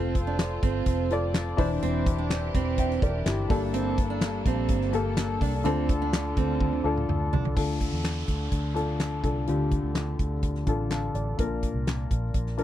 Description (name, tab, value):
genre	piano-driven pop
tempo	126 BPM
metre	4/4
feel	straight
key	D minor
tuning	A4 = 435 Hz
part	dark upright piano	accompaniment	0.0-12.6 s	G2 to A5	-29 LUFS	left 3 dB	none
part	warm studio string section	sustained chords	0.0-7.6 s	D3 to A4	-38 LUFS	right 1 dB	none
part	fingerpicked steel-string acoustic guitar	riff	0.0-7.4 s	C4 to D4	-31 LUFS	right 11 dB	none
part	vintage muted fingered electric bass	bass	0.0-12.6 s	E1 to E2	-30 LUFS	equal	none
part	natural country drum kit	drums	0.1-12.6 s	crash cymbal, handclaps, hi-hat, kick drum, snare drum, toms	-28 LUFS	equal	none
part	downlifter	sound effects	7.6-11.4 s	none	-42 LUFS	equal	none
room	little or no reverb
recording	dry, close 1970s-style studio recording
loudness	-24 LUFS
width	side -12 dB against mid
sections	0.0-7.6 A section; 7.6-12.6 B section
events	drum fill 6.6-7.6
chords	0.0 F; 1.6 Cadd9/E; 3.5 Gmadd9; 5.7 Dm; 11.4 Bb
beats	0.39 0.87 1.35 | 1.82 2.30 2.78 3.26 | 3.74 4.22 4.69 5.17 | 5.65 6.13 6.61 7.08 | 7.56 8.04 8.52 9.00 | 9.48 9.96 10.44 10.91 | 11.39 11.87 12.35